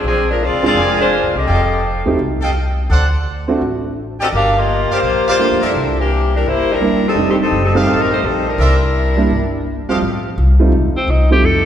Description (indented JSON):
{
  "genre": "jazz, big band swing",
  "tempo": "169 BPM",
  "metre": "4/4",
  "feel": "swing 65% on 8ths",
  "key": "F mixolydian",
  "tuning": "A4 = 440 Hz",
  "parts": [
    { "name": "warm saxophone section", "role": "melody", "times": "0.0-1.8, 4.2-9.7 s", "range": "Eb3 to F5", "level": "-16 LUFS", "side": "left 2 dB", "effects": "none" },
    { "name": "upright bass", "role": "bass", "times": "0.0-11.7 s", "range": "F1 to G2", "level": "-17 LUFS", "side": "equal", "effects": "none" },
    { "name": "warm upright piano", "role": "accompaniment", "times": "0.6-11.4 s", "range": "F2 to G4", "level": "-19 LUFS", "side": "right 3 dB", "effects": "none" },
    { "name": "bright trumpet section", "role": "stabs", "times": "0.8-10.0 s", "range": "G4 to Ab5", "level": "-22 LUFS", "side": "right 1 dB", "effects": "none" },
    { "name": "warm tenor saxophone", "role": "melody", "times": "11.0-11.7 s", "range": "C4 to A4", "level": "-15 LUFS", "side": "left 1 dB", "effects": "none" }
  ],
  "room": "wet concert hall reverb, RT60 2.1 s",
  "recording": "heard from further back in the room",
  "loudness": "-13 LUFS",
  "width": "side -10 dB against mid",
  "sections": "0.0-10.0 A section; 10.0-11.7 B section",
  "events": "tenor saxophone solo 10.0-11.7",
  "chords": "0.0 Bb9; 1.5 F9; 2.9 D7; 4.3 Gm7; 5.7 C9; 7.2 F9; 8.6 C9; 10.0 F9"
}